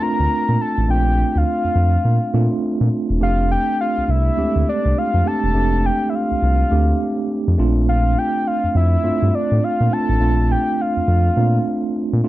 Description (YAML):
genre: R&B, new jack swing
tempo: 103 BPM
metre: 4/4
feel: swing 62% on 16ths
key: F major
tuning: A4 = 440 Hz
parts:
  - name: soft octave-layered synth lead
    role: melody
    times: 0.0-12.0 s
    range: D5 to Bb5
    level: -22 LUFS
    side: left 2 dB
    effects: chorus, slapback echo
  - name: mellow tine electric piano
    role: accompaniment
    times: 0.0-12.3 s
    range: Ab3 to G4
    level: -21 LUFS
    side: right 2 dB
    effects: medium stereo tremolo
  - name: smooth synth bass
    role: bass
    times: 0.2-12.2 s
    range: E1 to Bb2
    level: -17 LUFS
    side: equal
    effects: none
room: little or no reverb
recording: dry, close 1970s-style studio recording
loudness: -16 LUFS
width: side -16 dB against mid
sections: 0.0-3.2 A section; 3.2-12.3 B section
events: none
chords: 0.0 Bbmaj7; 3.2 F6; 7.6 Bbmaj7